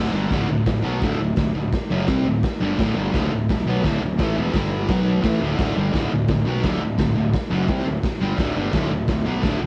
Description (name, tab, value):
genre	garage rock duo or trio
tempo	171 BPM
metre	4/4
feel	straight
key	D major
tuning	A4 = 440 Hz
part	fuzz guitar	riff	0.0-9.7 s	D2 to C4	-24 LUFS	equal	distortion
part	fuzz fingered electric bass	bass	0.0-9.7 s	D1 to C2	-29 LUFS	equal	overdrive
part	raw garage drum kit	drums	0.3-9.5 s	hi-hat, kick drum, snare drum	-26 LUFS	equal	cassette tape
room	light reverb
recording	home recording on cassette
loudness	-21 LUFS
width	mono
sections	0.0-9.7 A section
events	none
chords	0.0 D; 4.5 G5; 4.9 B5; 5.2 D